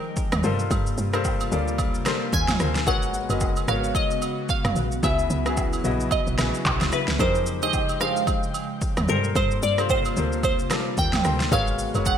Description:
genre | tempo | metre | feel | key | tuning
amapiano | 111 BPM | 4/4 | swing 58% on 16ths | unclear | A4 = 440 Hz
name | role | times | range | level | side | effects
glassy wavetable pluck | melody | 0.0-12.2 s | Bb4 to Ab5 | -26 LUFS | right 1 dB | chorus, ping-pong delay
warm baby grand piano | accompaniment | 0.0-12.2 s | Db3 to Fb5 | -29 LUFS | left 5 dB | lush chorus
airy breathy pad | sustained chords | 0.0-12.2 s | C3 to G5 | -32 LUFS | right 1 dB | chorus, sidechain pumping
deep house drum kit | drums | 0.2-12.2 s | handclaps, kick drum, rim click, shaker, snare drum, toms | -26 LUFS | equal | overdrive, gated reverb
woody log drum bass | bass | 0.3-12.2 s | Gb1 to G2 | -27 LUFS | equal | none
agogo bells and woodblock | percussion | 0.3-12.2 s | none | -34 LUFS | right 8 dB | none
room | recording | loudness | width
light reverb | bright 1980s-style digital production | -21 LUFS | side -8 dB against mid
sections
0.0-12.2 A section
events
none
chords
0.4 Gm11; 2.9 Abm11; 5.0 Dbm11; 7.2 Fm11; 9.1 Gm11; 11.5 Abm11

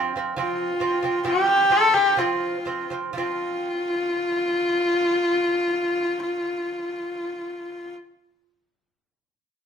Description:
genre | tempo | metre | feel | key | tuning
mongolian traditional, Mongolian folk | 59-71 BPM | 4/4 | straight | unclear | A4 = 441 Hz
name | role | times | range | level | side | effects
lute | arpeggios | 0.0-8.0 s | F3 to C4 | -28 LUFS | right 5 dB | none
bright horsehead fiddle | melody | 0.4-8.0 s | F4 to A4 | -21 LUFS | left 1 dB | none
room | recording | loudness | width
wet large studio reverb, RT60 0.9 s | band playing live in one room | -21 LUFS | side -7 dB against mid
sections
0.0-3.2 A section; 3.2-7.2 B section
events
slowing down 0.0-3.2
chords
0.0 F5

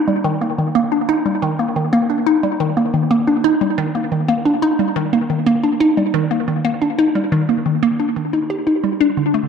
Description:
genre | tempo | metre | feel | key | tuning
ambient | 89 BPM | 4/4 | straight | unclear | A4 = 440 Hz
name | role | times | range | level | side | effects
hollow square pluck | solo | 0.1-9.4 s | D3 to G4 | -15 LUFS | equal | chorus, analog delay
room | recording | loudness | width
wet spring reverb, RT60 2.8 s | echo-heavy mix | -15 LUFS | side -6 dB against mid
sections
0.0-9.2 A section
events
none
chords
none

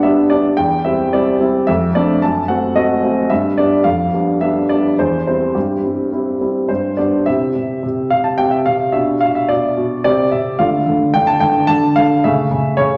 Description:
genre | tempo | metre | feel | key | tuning
classical-period piano sonatina | 109 BPM | 3/4 | rubato | C major | A4 = 440 Hz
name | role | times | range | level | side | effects
warm baby grand piano | solo | 0.0-13.0 s | E2 to A5 | -16 LUFS | equal | none
room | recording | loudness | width
wet recital hall reverb, RT60 1.5 s | none | -16 LUFS | mono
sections
0.0-7.3 A section; 7.3-13.0 B section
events
none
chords
0.0 G; 0.6 C/E; 1.7 Dm7/F; 2.2 F#dim7; 3.3 G; 3.9 G7/F; 5.0 C/E; 5.6 C/G; 6.7 G; 7.3 C; 8.9 G/B; 10.0 C; 10.6 Dm; 12.2 A/C#

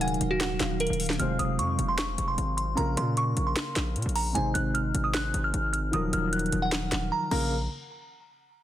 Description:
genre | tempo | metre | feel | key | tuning
hip hop, trap | 152 BPM | 4/4 | half-time | Bb minor | A4 = 440 Hz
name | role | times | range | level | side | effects
delicate synth tine bell | melody | 0.0-7.5 s | Gb4 to Gb6 | -30 LUFS | right 1 dB | chorus, low-pass filter, ping-pong delay
soft round pluck | second line | 0.0-0.8 s | F5 to Ab5 | -38 LUFS | equal | chorus, ping-pong delay
dark baby grand piano | accompaniment | 0.0-7.5 s | C3 to F5 | -32 LUFS | equal | low-pass filter
glassy FM pad | sustained chords | 0.0-1.2 s | Eb3 to F5 | -37 LUFS | right 3 dB | ensemble chorus, built-in reverb
hard-hitting 808-style bass | bass | 0.0-7.7 s | Eb1 to Bb2 | -30 LUFS | equal | none
trap drum kit | drums | 0.0-7.4 s | crash cymbal, handclaps, hi-hat, snare drum | -32 LUFS | left 1 dB | none
room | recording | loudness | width
light reverb | dense, heavily limited modern master | -25 LUFS | side -12 dB against mid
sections
0.0-1.2 A section; 1.2-7.5 B section; 7.5-8.6 C section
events
drums muted 7.1-7.5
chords
0.0 Ebmadd9; 1.2 Fm; 2.8 Bbm; 4.4 Ab; 5.9 Ebmadd9; 7.3 Bbm; 7.5 N.C.

